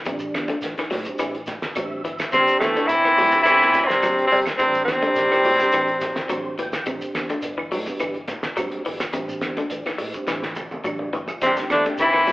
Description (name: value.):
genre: afrobeat.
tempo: 106 BPM.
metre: 4/4.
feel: straight.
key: A dorian.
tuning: A4 = 439 Hz.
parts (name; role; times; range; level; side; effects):
mellow tonewheel organ; accompaniment; 0.1-11.9 s; D3 to G5; -32 LUFS; right 1 dB; overdrive, fast rotary speaker.
electric guitar through a small old amp; arpeggios; 0.1-12.3 s; C3 to G3; -29 LUFS; left 2 dB; spring reverb.
fingered electric bass; bass; 0.1-12.3 s; G1 to A2; -38 LUFS; equal; none.
cloth-damped thuddy drum kit; drums; 0.1-12.3 s; hi-hat, kick drum, snare drum, toms; -29 LUFS; equal; none.
congas; percussion; 0.1-12.3 s; none; -36 LUFS; right 1 dB; none.
shekere; percussion; 0.1-12.3 s; none; -40 LUFS; right 1 dB; none.
claves; percussion; 0.3-12.3 s; none; -35 LUFS; right 2 dB; none.
breathy tenor saxophone; melody; 2.3-6.5, 11.4-12.3 s; A3 to E4; -17 LUFS; equal; none.
clear trombone; second line; 2.4-6.5, 11.5-12.3 s; E3 to C4; -27 LUFS; right 1 dB; none.
raspy baritone saxophone; second line; 2.4-6.5, 11.4-12.3 s; A2 to E3; -25 LUFS; equal; none.
electric guitar through a small old amp; stabs; 11.4-12.0 s; E3 to G4; -32 LUFS; right 1 dB; none.
room: moderate large studio reverb, RT60 1.1 s.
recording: band playing live in one room, telephone sound.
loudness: -19 LUFS.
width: side -19 dB against mid.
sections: 0.0-12.3 A section.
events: tonewheel organ fill 1.5-2.3, 6.0-6.9; drum fill 10.3-11.4.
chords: 0.0 Am7.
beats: | 0.06 0.63 1.19 1.76 | 2.33 2.90 3.46 4.03 | 4.60 5.17 5.73 6.30 | 6.87 7.44 8.01 8.57 | 9.14 9.71 10.28 10.85 | 11.42 11.99.